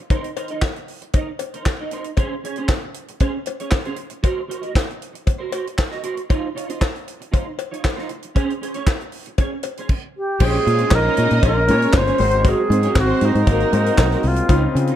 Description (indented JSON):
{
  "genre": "disco",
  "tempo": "117 BPM",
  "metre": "4/4",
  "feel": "straight",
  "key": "unclear",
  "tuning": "A4 = 440 Hz",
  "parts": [
    { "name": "clean electric guitar", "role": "accompaniment", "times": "0.0-15.0 s", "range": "Db4 to Eb5", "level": "-28 LUFS", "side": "right 4 dB", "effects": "ensemble chorus" },
    { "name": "tight funk drum kit", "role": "drums", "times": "0.1-15.0 s", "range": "crash cymbal, handclaps, hi-hat, kick drum, snare drum", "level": "-20 LUFS", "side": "equal", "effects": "none" },
    { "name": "cowbell", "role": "percussion", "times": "0.1-14.6 s", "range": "none", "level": "-31 LUFS", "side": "left 12 dB", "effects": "none" },
    { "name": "bright reedy alto flute", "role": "melody", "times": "10.2-14.8 s", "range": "Eb4 to C5", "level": "-20 LUFS", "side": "right 1 dB", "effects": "none" },
    { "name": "warm studio violin section", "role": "second line", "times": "10.4-14.2 s", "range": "Bb3 to G5", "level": "-23 LUFS", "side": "right 1 dB", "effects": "none" },
    { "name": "clear grand piano", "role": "accompaniment", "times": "10.4-15.0 s", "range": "Bb2 to Db5", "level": "-27 LUFS", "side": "left 5 dB", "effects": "none" },
    { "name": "mellow French horn section", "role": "sustained chords", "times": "10.4-15.0 s", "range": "Db3 to F4", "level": "-27 LUFS", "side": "left 3 dB", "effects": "none" },
    { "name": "fingered electric bass", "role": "bass", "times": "10.4-14.9 s", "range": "G1 to Db3", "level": "-19 LUFS", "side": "equal", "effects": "none" },
    { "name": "warm horn section", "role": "stabs", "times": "11.4-12.5 s", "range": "Eb4 to Db5", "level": "-28 LUFS", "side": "left 9 dB", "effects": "none" }
  ],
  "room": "small room ambience",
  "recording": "dark, warm production",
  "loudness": "-17 LUFS",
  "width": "side -11 dB against mid",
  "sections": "0.0-10.4 A section; 10.4-15.0 B section",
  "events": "none",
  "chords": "0.1 Cm7; 2.2 Abadd11/Db; 4.0 Gb; 6.3 Dbmaj9 (rootless); 8.4 Abadd11/Db; 10.4 Bbm9; 12.2 Ab9"
}